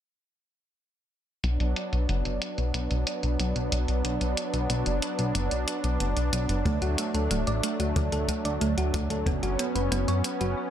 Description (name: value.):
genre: synthwave.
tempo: 92 BPM.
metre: 4/4.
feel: straight.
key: B minor.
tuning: A4 = 440 Hz.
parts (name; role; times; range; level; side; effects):
lush unison pad; sustained chords; 1.4-10.7 s; F#3 to D4; -30 LUFS; equal; chorus, sidechain pumping.
chorused synth bass; bass; 1.4-10.6 s; D1 to F#2; -27 LUFS; equal; sidechain pumping.
electronic hi-hat; drums; 1.4-10.5 s; none; -34 LUFS; equal; low-pass filter on hats, low-pass filter on room.
thumb-piano-like synth pluck; arpeggios; 6.7-10.5 s; A3 to D5; -31 LUFS; right 3 dB; chorus, ping-pong delay.
kick drum; drums; 6.7-9.4 s; none; -30 LUFS; equal; none.
room: light reverb.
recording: bright 1980s-style digital production.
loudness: -25 LUFS.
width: side -10 dB against mid.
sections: 1.4-10.7 A section.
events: filter sweep on analog synth bass 1.4-10.7.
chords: 1.4 Bm; 6.7 D; 9.3 F#sus4.